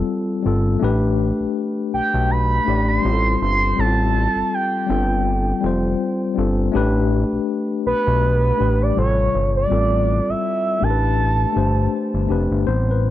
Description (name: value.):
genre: R&B, neo-soul.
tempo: 81 BPM.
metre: 4/4.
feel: swing 56% on 16ths.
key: A minor.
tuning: A4 = 437 Hz.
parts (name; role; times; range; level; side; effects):
mellow tine electric piano; accompaniment; 0.0-13.1 s; B#2 to D5; -21 LUFS; left 4 dB; auto-pan.
fat analog bass; bass; 0.0-13.1 s; F1 to B1; -20 LUFS; equal; none.
expressive synth lead; melody; 1.9-11.9 s; B4 to C6; -21 LUFS; right 2 dB; chorus.
room: little or no reverb.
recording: none.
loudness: -17 LUFS.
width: side -13 dB against mid.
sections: 0.0-12.7 A section.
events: none.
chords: 0.0 G9sus4; 0.8 Asus2; 3.0 G9sus4; 6.7 Asus2; 9.0 A7alt; 9.7 Dm9/A; 10.8 Am11.